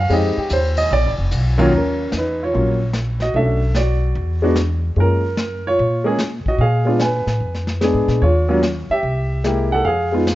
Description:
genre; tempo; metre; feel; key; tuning
jazz piano trio; 148 BPM; 4/4; swing 66% on 8ths; Eb minor; A4 = 443 Hz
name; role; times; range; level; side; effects
warm baby grand piano; melody; 0.0-10.3 s; Eb2 to Ab5; -18 LUFS; equal; none
upright bass; bass; 0.0-10.3 s; F1 to Bb2; -19 LUFS; equal; none
vintage brush drum kit; drums; 0.1-10.3 s; brushed snare drum, hi-hat, kick drum, ride cymbal, snare drum; -27 LUFS; left 1 dB; none
room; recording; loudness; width
light reverb; worn, warbling old tape, cassette tape, warbly pitch drift, nothing above 7.7 kHz; -16 LUFS; side -16 dB against mid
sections
0.0-1.7 A section; 1.7-10.3 B section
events
grand piano solo 0.0-1.7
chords
0.1 Fm7; 0.9 Bb5; 1.7 Ebm7; 3.3 Bm7; 4.2 E7sus2; 5.0 Gbmaj7; 6.6 Bb7b9; 8.2 Eb7sus2; 9.0 C7b13

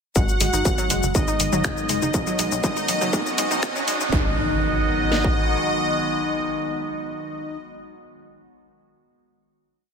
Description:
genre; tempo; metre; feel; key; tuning
melodic techno; 121 BPM; 4/4; straight; G# minor; A4 = 436 Hz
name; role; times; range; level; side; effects
soft octave-layered synth lead; melody; 0.2-7.6 s; D#4 to F#4; -29 LUFS; equal; chorus, digital delay
soft supersaw; second line; 0.2-7.6 s; D#5 to F#5; -27 LUFS; left 1 dB; sidechain pumping, dub echo
evolving wavetable pad; sustained chords; 0.8-7.6 s; D#3 to F#4; -29 LUFS; right 1 dB; phaser, built-in reverb, sidechain pumping
wide unison pluck; arpeggios; 0.2-4.4 s; F#3 to D#4; -29 LUFS; right 1 dB; sidechain pumping, dub echo
tight sequencer bass; bass; 0.2-5.6 s; F#1 to B1; -28 LUFS; equal; sidechain pumping
techno drum kit; drums; 0.2-5.4 s; kick drum, snare drum; -23 LUFS; equal; distortion
techno drum kit; drums; 0.2-4.1 s; finger snaps, hi-hat, shaker; -26 LUFS; left 3 dB; high-pass filter on perc, high-pass filter on hats, high-pass filter on snare, high-pass filter on room
riser and impact; sound effects; 2.3-7.6 s; none; -30 LUFS; right 1 dB; none
room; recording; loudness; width
light reverb; high-pass filter; -20 LUFS; side -6 dB against mid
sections
0.2-4.1 build; 4.1-8.1 final chord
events
build-up 0.2-4.1; filter sweep on ambient pad 0.2-4.1; filter sweep 0.2-4.1; riser 2.3-4.1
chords
0.2 G#m7; 2.1 Badd9; 4.1 G#m7

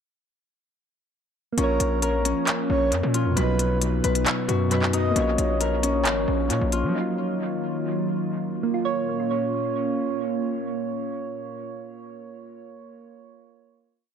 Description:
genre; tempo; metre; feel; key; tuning
hip hop, trap; 134 BPM; 4/4; half-time; Bb phrygian; A4 = 442 Hz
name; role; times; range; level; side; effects
soft electric-piano-like synth keys; accompaniment; 1.5-14.1 s; B2 to Db5; -28 LUFS; right 3 dB; chorus, dub echo
breathy flute-like synth lead; second line; 1.6-5.1 s; Bb4 to D#5; -31 LUFS; right 4 dB; chorus, dub echo
warbly tape-like pad; sustained chords; 2.1-12.2 s; Bb2 to F4; -29 LUFS; equal; chorus, built-in reverb
Celtic harp; arpeggios; 1.6-9.2 s; Db4 to B4; -28 LUFS; left 5 dB; dub echo
distorted 808-style bass; bass; 1.6-6.9 s; Ab1 to F3; -25 LUFS; equal; distortion
trap drum kit; drums; 1.6-6.8 s; handclaps, hi-hat; -29 LUFS; equal; dub echo
room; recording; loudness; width
moderate spring reverb, RT60 1.9 s; echo-heavy mix; -22 LUFS; side -7 dB against mid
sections
1.6-8.7 hook; 8.7-12.3 final chord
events
none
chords
1.6 Bbm; 3.4 B; 5.2 Bbm; 7.0 Ebmadd9; 8.7 Bbm

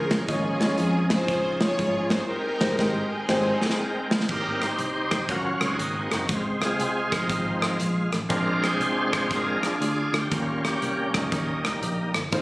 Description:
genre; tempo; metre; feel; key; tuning
uptempo gospel; 120 BPM; 4/4; swing 65% on 8ths; unclear; A4 = 440 Hz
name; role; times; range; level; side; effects
rich studio string section; melody; 0.0-4.1 s; C4 to Db5; -27 LUFS; equal; none
bright tonewheel organ; sustained chords; 0.0-12.4 s; F3 to G5; -26 LUFS; equal; slow rotary speaker, overdrive, chorus vibrato
fingered electric bass; bass; 0.0-12.4 s; Gb1 to Ab2; -31 LUFS; equal; none
modern studio drum kit; drums; 0.1-12.4 s; crash cymbal, hi-hat, kick drum, rim click, snare drum; -27 LUFS; equal; none
warm concert grand piano; accompaniment; 0.3-3.5, 12.3-12.4 s; Ab2 to Db5; -26 LUFS; equal; none
room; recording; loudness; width
light reverb, small room reverb; recorded on a phone in the room, studio reverb; -22 LUFS; side -21 dB against mid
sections
0.0-4.3 A section; 4.3-12.4 B section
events
band accent 2.3-4.3; drum fill 3.3-4.3; tonewheel organ solo 4.3-12.4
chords
0.3 Eb9sus4; 2.3 Abmaj9; 5.3 Ebm7; 5.8 Ab9; 6.3 Dbmaj7; 8.3 Bb7; 10.3 Eb7

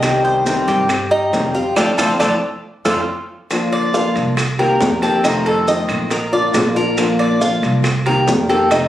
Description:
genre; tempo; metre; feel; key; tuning
latin, Cuban son and guajira; 138 BPM; 4/4; straight; Bb major; A4 = 439 Hz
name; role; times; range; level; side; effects
fingerpicked acoustic archtop guitar; accompaniment; 0.0-8.9 s; C3 to G4; -17 LUFS; left 2 dB; none
Cuban tres; arpeggios; 0.0-8.9 s; D4 to Eb5; -18 LUFS; right 1 dB; slapback echo
upright bass; bass; 0.0-8.9 s; Bb1 to G2; -23 LUFS; right 1 dB; none
bongos; percussion; 0.0-8.9 s; none; -25 LUFS; left 2 dB; none
claves; percussion; 0.0-8.9 s; none; -28 LUFS; equal; none
maracas; percussion; 0.0-8.9 s; none; -30 LUFS; right 1 dB; none
timbales; percussion; 0.0-8.9 s; none; -25 LUFS; right 3 dB; none
room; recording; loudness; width
moderate studio reverb, RT60 0.7 s; recorded on a phone in the room, studio reverb; -14 LUFS; side -12 dB against mid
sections
0.0-3.5 A section; 3.5-8.9 B section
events
band accent 1.8-3.5; drum fill 3.3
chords
0.0 Cm; 1.8 F6; 3.5 Bb; 4.4 Cm7; 5.2 F7; 6.1 Bb; 7.8 Cm7

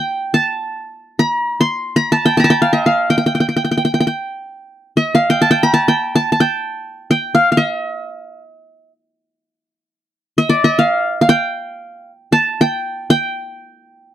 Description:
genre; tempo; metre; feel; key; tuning
Arabic maqam ensemble; free time; none; none; unclear; A4 = 440 Hz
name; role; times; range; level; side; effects
qanun; solo; 0.0-14.1 s; D5 to C6; -14 LUFS; equal; none
room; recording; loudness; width
light reverb; dry, close 1970s-style studio recording; -13 LUFS; side -11 dB against mid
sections
0.0-14.1 A section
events
slowing down 9.5-14.1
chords
none

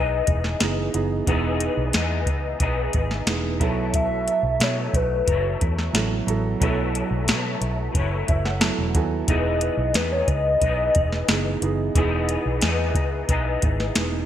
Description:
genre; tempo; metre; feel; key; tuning
indie pop, bedroom pop; 90 BPM; 4/4; straight; E major; A4 = 440 Hz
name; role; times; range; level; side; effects
warbly nostalgic lead; melody; 0.0-11.6 s; B4 to E5; -25 LUFS; left 2 dB; lush chorus, digital delay
electric guitar through a small old amp; accompaniment; 0.0-14.3 s; B2 to G#4; -28 LUFS; left 4 dB; ensemble chorus, warbly pitch drift
warm upright piano; accompaniment; 0.0-14.3 s; E3 to A5; -28 LUFS; right 6 dB; cassette tape
vintage muted fingered electric bass; bass; 0.0-14.3 s; E1 to B2; -26 LUFS; equal; none
soft vintage rhythm box; drums; 0.3-14.1 s; hi-hat, kick drum, snare drum; -24 LUFS; equal; gated reverb
room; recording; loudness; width
light reverb; bright 1980s-style digital production; -20 LUFS; side -11 dB against mid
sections
0.0-14.3 A section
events
upright piano fill 8.0-9.3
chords
0.0 Emaj7; 3.6 B7sus4; 9.3 Emaj7

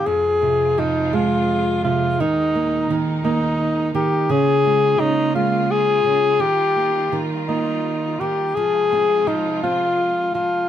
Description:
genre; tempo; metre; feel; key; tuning
children's music, lullaby; 56 BPM (dotted quarters); 6/8; straight; unclear; A4 = 442 Hz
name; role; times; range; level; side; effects
breathy alto saxophone; melody; 0.0-10.7 s; Eb4 to Ab4; -18 LUFS; left 2 dB; none
nylon-string guitar; accompaniment; 0.0-10.7 s; F2 to C4; -23 LUFS; right 4 dB; none
clear symphonic string section; sustained chords; 0.0-10.7 s; Eb2 to F4; -29 LUFS; equal; none
room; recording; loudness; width
moderate studio reverb, RT60 0.7 s; band playing live in one room; -17 LUFS; side -10 dB against mid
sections
0.1-10.7 A section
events
none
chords
0.1 Fm; 2.2 Absus2/Eb; 4.3 Db6; 6.4 Ebadd9; 8.6 Fm

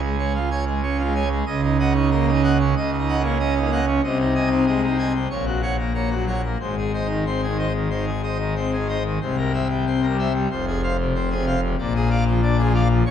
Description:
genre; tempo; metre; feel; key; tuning
classical, organ toccata; 93 BPM; 4/4; straight; unclear; A4 = 440 Hz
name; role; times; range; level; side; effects
pipe organ, full organ; solo; 0.0-13.1 s; Eb1 to Ab5; -19 LUFS; equal; none
room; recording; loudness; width
wet church reverb, RT60 2.3 s; dark, warm production; -19 LUFS; side -9 dB against mid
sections
0.0-13.1 A section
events
none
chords
0.0 Db; 1.5 Ebm7/Db; 4.0 Ab/C; 5.3 Gb/Bb; 6.6 Ab; 9.2 C7; 10.5 Fm; 11.8 Bb7

